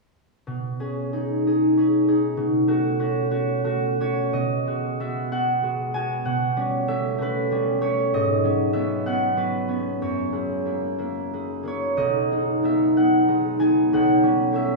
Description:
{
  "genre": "classical, solo harp piece",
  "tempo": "54-66 BPM (dotted quarters)",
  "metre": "6/8",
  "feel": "rubato",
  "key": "B mixolydian",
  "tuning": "A4 = 444 Hz",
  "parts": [
    { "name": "concert harp", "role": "solo", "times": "0.5-14.8 s", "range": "B1 to G#5", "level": "-20 LUFS", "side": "right 1 dB", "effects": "none" }
  ],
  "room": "wet recital hall reverb, RT60 1.6 s",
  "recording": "heard from further back in the room, studio reverb",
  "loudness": "-20 LUFS",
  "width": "side +0 dB against mid",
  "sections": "0.5-4.4 A section; 4.4-14.8 B section",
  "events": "none",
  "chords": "0.5 B69; 2.4 A69/B; 4.4 B6; 6.3 A9/B; 8.1 G#m7; 10.0 F#13; 12.0 B6; 13.9 A9/B",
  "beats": "| 0.46 1.45 | 2.37 3.31 | 4.36 5.33 | 6.28 7.22 | 8.14 9.07 | 10.01 11.00 | 11.98 12.96 | 13.91"
}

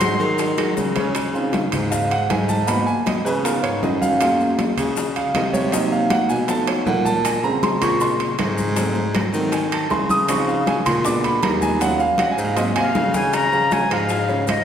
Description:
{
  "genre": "Afro-Cuban jazz",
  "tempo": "158 BPM",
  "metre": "4/4",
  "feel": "straight",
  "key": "Db major",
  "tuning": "A4 = 440 Hz",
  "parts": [
    { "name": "breathy concert flute", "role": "melody", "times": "0.0-0.7, 12.8-14.6 s", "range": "Eb5 to C6", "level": "-21 LUFS", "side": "left 2 dB", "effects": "none" },
    { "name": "clear grand piano", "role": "accompaniment", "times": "0.0-14.6 s", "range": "Db3 to Eb6", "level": "-21 LUFS", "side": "right 2 dB", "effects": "none" },
    { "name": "breathy baritone saxophone", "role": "bass", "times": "0.0-14.6 s", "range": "Eb2 to Eb3", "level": "-23 LUFS", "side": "left 1 dB", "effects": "none" },
    { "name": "bongos", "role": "percussion", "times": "0.0-14.6 s", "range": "none", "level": "-30 LUFS", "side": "left 4 dB", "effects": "none" },
    { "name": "claves", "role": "percussion", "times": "0.0-0.8, 7.3-14.6 s", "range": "none", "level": "-36 LUFS", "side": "right 1 dB", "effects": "none" },
    { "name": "congas", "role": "percussion", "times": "0.0-14.6 s", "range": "none", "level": "-27 LUFS", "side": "equal", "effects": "none" },
    { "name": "maracas", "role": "percussion", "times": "0.0-14.6 s", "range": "none", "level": "-35 LUFS", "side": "left 6 dB", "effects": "none" },
    { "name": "timbales", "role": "percussion", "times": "0.0-14.6 s", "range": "none", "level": "-29 LUFS", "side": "right 2 dB", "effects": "none" }
  ],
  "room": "wet concert hall reverb, RT60 2.3 s",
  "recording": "recorded in a church or concert hall",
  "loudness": "-17 LUFS",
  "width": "side -8 dB against mid",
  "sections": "0.0-1.2 A section; 1.2-13.3 B section; 13.3-14.6 C section",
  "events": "drum fill 0.6-1.2, 12.8-13.3; grand piano solo 1.2-13.3",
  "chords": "0.0 Ab7; 1.2 Dbmaj9; 2.7 Abm7; 3.4 Db7; 4.2 Gbmaj9; 5.7 Cm7b5; 6.5 Cb7#11; 7.3 Bbm9; 8.8 Ab7b9; 10.3 Dbmaj9; 11.1 Bb7b9; 11.8 Ebm7; 12.6 Ab13; 13.3 Db",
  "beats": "0.01 0.40 0.78 | 1.16 1.54 1.92 2.30 | 2.68 3.06 3.44 3.82 | 4.20 4.59 4.97 5.35 | 5.73 6.11 6.49 6.87 | 7.25 7.63 8.01 8.39 | 8.77 9.15 9.53 9.91 | 10.29 10.67 11.05 11.43 | 11.81 12.19 12.57 12.95 | 13.33 13.72 14.10 14.48"
}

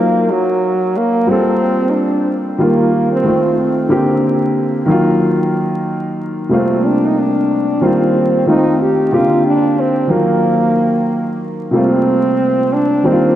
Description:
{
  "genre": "hip hop",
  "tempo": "92 BPM",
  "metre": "4/4",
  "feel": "swing 59% on 16ths",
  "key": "unclear",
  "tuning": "A4 = 439 Hz",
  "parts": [
    { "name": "warm French horn", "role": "melody", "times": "0.0-13.4 s", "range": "Gb3 to G4", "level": "-15 LUFS", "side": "right 1 dB", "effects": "diffuse ambient delay" },
    { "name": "dark upright piano", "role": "accompaniment", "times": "0.0-13.4 s", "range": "C3 to Bb4", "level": "-14 LUFS", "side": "equal", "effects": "none" }
  ],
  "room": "wet lush hall reverb, RT60 2.6 s",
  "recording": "dreamy mix soaked in reverb, vinyl crackle",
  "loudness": "-12 LUFS",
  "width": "side -12 dB against mid",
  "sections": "0.0-13.4 A section",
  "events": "none",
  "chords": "0.0 Ebmadd9; 1.3 Gm11; 2.6 F9sus4; 3.3 F7; 3.9 Bb69; 4.9 Ebmadd9; 6.5 Gm11; 7.8 F9sus4; 8.5 F7; 9.1 Bb69; 10.1 Ebmadd9; 11.7 Gm11",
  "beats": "0.00 0.65 | 1.30 1.95 2.60 3.26 | 3.91 4.56 5.21 5.87 | 6.52 7.17 7.82 8.47 | 9.13 9.78 10.43 11.08 | 11.73 12.39 13.04"
}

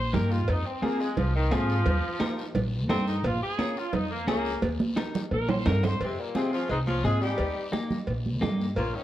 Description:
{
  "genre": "latin, cumbia",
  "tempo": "174 BPM",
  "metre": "4/4",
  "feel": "straight",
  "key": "unclear",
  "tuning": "A4 = 440 Hz",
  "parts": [
    { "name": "bright saxophone section", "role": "melody", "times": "0.0-9.0 s", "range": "Eb3 to C5", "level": "-31 LUFS", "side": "equal", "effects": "none" },
    { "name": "upright bass", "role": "bass", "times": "0.0-8.9 s", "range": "Bb1 to Ab2", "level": "-28 LUFS", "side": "equal", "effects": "none" },
    { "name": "clean electric guitar", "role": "accompaniment", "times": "0.1-8.7 s", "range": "Bb3 to Bb4", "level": "-32 LUFS", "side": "left 2 dB", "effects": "spring reverb" },
    { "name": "congas", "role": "percussion", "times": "0.1-8.9 s", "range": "none", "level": "-31 LUFS", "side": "right 3 dB", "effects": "none" },
    { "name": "guiro", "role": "percussion", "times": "0.1-9.0 s", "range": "none", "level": "-46 LUFS", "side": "left 4 dB", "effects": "none" },
    { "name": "cowbell and timbales", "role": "percussion", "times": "0.5-8.9 s", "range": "none", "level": "-35 LUFS", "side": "right 2 dB", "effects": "none" },
    { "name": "raspy tenor saxophone", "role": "second line", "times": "6.0-9.0 s", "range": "Bb2 to Bb3", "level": "-33 LUFS", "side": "left 3 dB", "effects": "none" }
  ],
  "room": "moderate large studio reverb, RT60 1.1 s",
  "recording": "worn, warbling old tape, cassette tape, warbly pitch drift",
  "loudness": "-25 LUFS",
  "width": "side -13 dB against mid",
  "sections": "0.0-6.0 A section; 6.0-9.0 B section",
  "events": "saxophone section solo 0.0-6.0; drum fill 4.6-6.0",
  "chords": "0.5 Fm; 1.9 Eb; 3.2 Bbm; 4.6 Eb; 6.0 Fm; 7.4 Eb",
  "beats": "0.14 | 0.48 0.83 1.18 1.52 | 1.86 2.21 2.55 2.90 | 3.24 3.59 3.93 4.28 | 4.62 4.97 5.31 5.66 | 6.00 6.35 6.69 7.04 | 7.38 7.73 8.08 8.42 | 8.77"
}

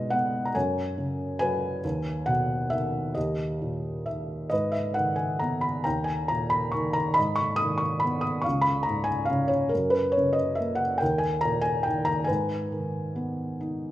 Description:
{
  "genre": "classical, lyrical solo piano",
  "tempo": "46 BPM (dotted quarters)",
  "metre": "6/8",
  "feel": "uneven beats, rubato",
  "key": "G# minor",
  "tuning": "A4 = 441 Hz",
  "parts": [
    { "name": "felt-muted upright piano", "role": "solo", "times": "0.0-13.9 s", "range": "C#2 to D#6", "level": "-24 LUFS", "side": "equal", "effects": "none" }
  ],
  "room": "moderate recital hall reverb, RT60 1.7 s",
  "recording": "minimal, uncompressed stereo recording",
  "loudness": "-24 LUFS",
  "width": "side -14 dB against mid",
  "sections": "0.0-13.9 A section",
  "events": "felt piano fill 13.6-13.9",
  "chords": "0.0 G#m/B; 0.6 F#5; 1.8 Emaj9/D#; 3.2 D#; 4.5 G#m; 5.9 D#; 7.2 G#m; 8.5 C#; 9.7 F#; 11.0 D#5; 12.3 G#m",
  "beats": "0.56 | 1.84 3.16 | 4.50 5.85 | 7.17 8.45 | 9.72 11.01 | 12.29 13.60"
}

